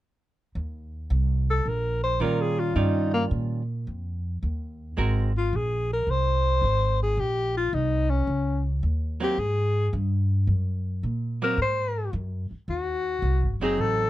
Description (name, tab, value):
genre	jazz, small-group swing and bop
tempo	109 BPM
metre	4/4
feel	swing 69% on 8ths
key	unclear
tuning	A4 = 440 Hz
part	upright bass	bass	0.6-14.1 s	Gb1 to Bb2	-26 LUFS	equal	none
part	mellow alto saxophone	melody	1.5-14.1 s	Bb3 to C5	-26 LUFS	left 2 dB	none
part	archtop guitar, miked and amplified	accompaniment	2.2-5.3, 9.2-14.1 s	Eb3 to Bb4	-28 LUFS	right 5 dB	none
room	little or no reverb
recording	close, detailed microphones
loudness	-23 LUFS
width	side -15 dB against mid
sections	0.6-14.1 A section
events	none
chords	0.6 Eb9; 5.0 Ab9; 7.2 Eb5; 9.4 Ab9